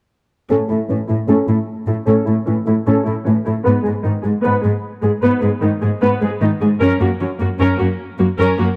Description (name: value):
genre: cinematic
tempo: 76 BPM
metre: 4/4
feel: straight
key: unclear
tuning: A4 = 440 Hz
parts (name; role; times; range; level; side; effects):
- warm symphonic viola section; accompaniment; 0.5-8.7 s; D#3 to B4; -20 LUFS; equal; low-pass filter
- rich symphonic cello section; bass; 0.5-8.7 s; F#2 to A2; -20 LUFS; equal; none
room: moderate scoring stage reverb, RT60 2.0 s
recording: none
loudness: -17 LUFS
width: mono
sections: 0.5-8.8 A section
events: filter sweep on viola section 0.5-8.8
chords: 0.5 A; 3.7 G#m; 6.8 F#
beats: | 0.50 1.29 2.08 2.87 | 3.65 4.45 5.23 6.02 | 6.81 7.60 8.39